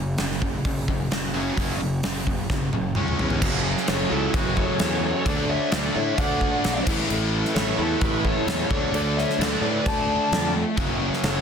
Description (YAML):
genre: hard rock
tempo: 130 BPM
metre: 4/4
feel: straight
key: F# minor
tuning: A4 = 436 Hz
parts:
  - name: biting overdriven guitar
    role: riff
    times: 0.0-11.4 s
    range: F#2 to D4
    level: -29 LUFS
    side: left 10 dB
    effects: none
  - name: biting overdriven guitar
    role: riff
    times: 0.0-11.4 s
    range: F#2 to D4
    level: -29 LUFS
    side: right 11 dB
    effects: none
  - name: fuzz fingered electric bass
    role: bass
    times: 0.0-11.4 s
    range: F#1 to A2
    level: -29 LUFS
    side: equal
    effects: overdrive
  - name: gated 80s drum kit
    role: drums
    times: 0.2-11.3 s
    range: crash cymbal, hi-hat, kick drum, snare drum, toms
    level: -26 LUFS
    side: equal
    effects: none
  - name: warm analog pad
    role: sustained chords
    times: 3.4-11.4 s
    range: F#3 to G#5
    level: -38 LUFS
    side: equal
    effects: none
  - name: lead guitar through a small cranked amp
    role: melody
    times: 3.9-11.4 s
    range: A4 to A5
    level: -28 LUFS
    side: left 2 dB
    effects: overdrive, slapback echo
  - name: bluesy overdriven lead guitar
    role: second line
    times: 3.9-11.4 s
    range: E4 to D5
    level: -32 LUFS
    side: right 2 dB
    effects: distortion, slapback echo, plate reverb
room: moderate studio reverb, RT60 0.5 s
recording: dense, heavily limited modern master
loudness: -21 LUFS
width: side -7 dB against mid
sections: 0.0-3.4 A section; 3.4-11.4 B section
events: drum fill 2.5-3.4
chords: 0.0 F#5; 3.0 C#5; 3.4 F#m; 5.3 D; 6.9 A; 8.7 D5; 10.8 F#m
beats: 0.19 0.65 1.11 | 1.58 2.04 2.50 2.96 | 3.42 3.88 4.34 4.80 | 5.26 5.72 6.18 6.64 | 7.10 7.56 8.02 8.48 | 8.94 9.40 9.86 10.32 | 10.78 11.23